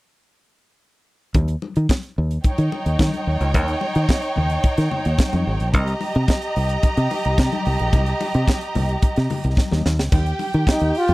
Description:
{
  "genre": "disco",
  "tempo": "109 BPM",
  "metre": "4/4",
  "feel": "straight",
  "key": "unclear",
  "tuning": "A4 = 440 Hz",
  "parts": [
    { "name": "tight funk drum kit", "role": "drums", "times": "1.3-11.1 s", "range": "crash cymbal, hi-hat, kick drum, snare drum", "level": "-19 LUFS", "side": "equal", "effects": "none" },
    { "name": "fingered electric bass", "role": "bass", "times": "1.4-11.1 s", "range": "Ab1 to Eb3", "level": "-20 LUFS", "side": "equal", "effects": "none" },
    { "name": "congas", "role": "percussion", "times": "1.4-10.8 s", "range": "none", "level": "-30 LUFS", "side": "left 4 dB", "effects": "none" },
    { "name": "warm studio violin section", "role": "second line", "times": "2.4-11.1 s", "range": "Eb4 to Bb5", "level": "-25 LUFS", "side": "right 1 dB", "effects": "none" },
    { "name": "warm flugelhorn", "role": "melody", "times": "10.7-11.1 s", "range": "Eb4 to F4", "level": "-19 LUFS", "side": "equal", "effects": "none" }
  ],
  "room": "little or no reverb",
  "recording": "dry, close 1970s-style studio recording",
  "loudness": "-18 LUFS",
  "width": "side -20 dB against mid",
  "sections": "1.3-10.1 A section; 10.1-11.1 B section",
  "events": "drum fill 9.6-10.1",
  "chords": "1.3 Eb7; 5.7 Cm7; 9.8 Dbsus2; 10.1 Eb"
}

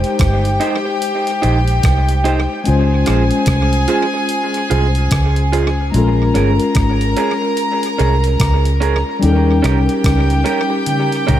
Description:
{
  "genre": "lovers rock reggae",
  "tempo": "73 BPM",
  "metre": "4/4",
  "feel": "swing 60% on 16ths",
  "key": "Ab major",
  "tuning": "A4 = 441 Hz",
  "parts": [
    { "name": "warm studio violin section", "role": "second line", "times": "0.0-11.4 s", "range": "G4 to Bb5", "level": "-20 LUFS", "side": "equal", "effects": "tape echo" },
    { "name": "tine electric piano", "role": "accompaniment", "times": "0.0-11.4 s", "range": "G3 to C5", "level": "-19 LUFS", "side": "left 3 dB", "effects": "medium tremolo, tape echo" },
    { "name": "vintage muted fingered electric bass", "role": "bass", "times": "0.0-11.4 s", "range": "G1 to Eb2", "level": "-15 LUFS", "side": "equal", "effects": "none" },
    { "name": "crisp 8-bit digital drum machine", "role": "drums", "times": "0.0-11.4 s", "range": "hi-hat, kick drum, rim click, toms", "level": "-21 LUFS", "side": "equal", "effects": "tape echo" },
    { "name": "electric guitar through a small old amp", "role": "stabs", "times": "0.6-11.4 s", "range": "Db4 to C5", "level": "-22 LUFS", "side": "right 5 dB", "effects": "tape echo" }
  ],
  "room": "light reverb",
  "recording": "none",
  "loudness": "-13 LUFS",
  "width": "side -11 dB against mid",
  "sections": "0.0-11.4 A section",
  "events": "drum fill 10.9-11.4",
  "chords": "0.0 Abmaj7; 2.7 Dbmaj7; 5.9 Bbm7; 9.2 Eb7"
}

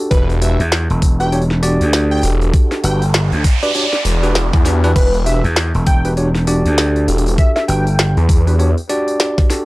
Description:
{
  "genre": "glitch hop",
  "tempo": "99 BPM",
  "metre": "4/4",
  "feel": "swing 60% on 16ths",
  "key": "E minor",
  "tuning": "A4 = 440 Hz",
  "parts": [
    { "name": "bell-like tine electric piano", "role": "stabs", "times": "0.0-9.7 s", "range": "D4 to D5", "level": "-20 LUFS", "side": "equal", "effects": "vintage 12-bit sampler grit, sidechain pumping, analog delay" },
    { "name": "plucky unison lead", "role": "melody", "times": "0.1-8.2 s", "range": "B4 to G5", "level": "-22 LUFS", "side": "equal", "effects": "analog delay" },
    { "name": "phased detuned saw bass", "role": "bass", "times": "0.1-8.7 s", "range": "E1 to E2", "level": "-14 LUFS", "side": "equal", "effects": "phaser" },
    { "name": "electronic kick drum", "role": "drums", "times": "0.1-9.5 s", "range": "none", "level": "-13 LUFS", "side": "equal", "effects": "overdrive" },
    { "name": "glitchy drum kit", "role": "drums", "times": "0.1-9.6 s", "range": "crash cymbal, hi-hat, snare drum", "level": "-21 LUFS", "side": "equal", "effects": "overdrive" },
    { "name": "gritty slap bass", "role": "bass", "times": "0.6-8.1 s", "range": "E1 to E2", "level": "-15 LUFS", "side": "equal", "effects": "overdrive" },
    { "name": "noise sweep", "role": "sound effects", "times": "2.8-5.0 s", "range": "none", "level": "-22 LUFS", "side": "right 2 dB", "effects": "none" }
  ],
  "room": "little or no reverb",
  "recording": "dry, gritty hardware recording",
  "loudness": "-12 LUFS",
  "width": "side -20 dB against mid",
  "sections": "0.0-9.7 A section",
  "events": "noise sweep 2.8-5.0",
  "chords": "0.0 Em7"
}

